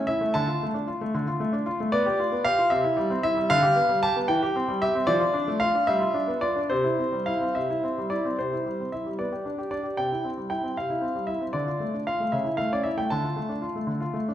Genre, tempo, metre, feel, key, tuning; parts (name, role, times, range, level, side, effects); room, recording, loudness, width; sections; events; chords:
classical-period piano sonatina; 76 BPM (dotted quarters); 6/8; straight; C major; A4 = 435 Hz
clear concert grand piano; solo; 0.0-14.3 s; C3 to A5; -23 LUFS; equal
wet recital hall reverb, RT60 1.5 s; recorded in a church or concert hall; -23 LUFS; side -11 dB against mid
0.0-8.4 A section; 8.4-14.3 A section
0.3 Dm; 1.9 G7/B; 2.7 C; 3.5 G7/D; 4.3 C/E; 5.1 Dm/F; 5.9 G7; 6.7 C; 9.2 G/B; 10.0 C; 11.5 Dm; 12.3 A/C#; 13.1 Dm